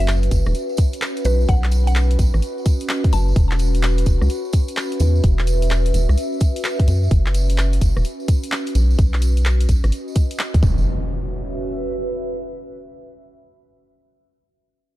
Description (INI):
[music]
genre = UK garage, two-step garage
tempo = 128 BPM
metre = 4/4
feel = swing 65% on 16ths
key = unclear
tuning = A4 = 440 Hz
[part]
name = mallet-like synth pluck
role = melody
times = 0.0-3.3 s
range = B4 to A5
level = -30 LUFS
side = equal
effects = chorus, cassette tape, digital delay
[part]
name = rubbery square bass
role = bass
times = 0.0-10.8 s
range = E1 to F#2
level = -17 LUFS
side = equal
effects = none
[part]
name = punchy analog drum machine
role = drums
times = 0.0-10.6 s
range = handclaps, hi-hat, rim click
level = -27 LUFS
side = equal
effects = overdrive
[part]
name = tambourine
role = percussion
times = 0.0-10.8 s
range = none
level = -38 LUFS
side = right 3 dB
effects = none
[part]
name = warbly tape-like pad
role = texture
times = 0.0-12.7 s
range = C#4 to E5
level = -27 LUFS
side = equal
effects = chorus, built-in reverb, phaser, sidechain pumping
[part]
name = electronic kick drum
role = drums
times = 0.3-10.7 s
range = none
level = -16 LUFS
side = equal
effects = none
[part]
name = impact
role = sound effects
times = 10.6-12.5 s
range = none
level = -26 LUFS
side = equal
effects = none
[sound]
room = little or no reverb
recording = dark, warm production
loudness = -16 LUFS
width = side -16 dB against mid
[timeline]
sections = 0.0-10.9 A section; 10.9-12.7 B section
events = filter sweep on analog synth bass 0.0-10.9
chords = 0.0 Esus2; 1.3 B; 3.4 Esus2; 8.8 B; 10.6 Esus2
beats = 0.08 0.55 1.02 | 1.49 1.96 2.42 2.89 | 3.36 3.83 4.30 4.77 | 5.24 5.71 6.17 6.64 | 7.11 7.58 8.05 8.52 | 8.99 9.46 9.92 10.39 | 10.86 11.33 11.80 12.27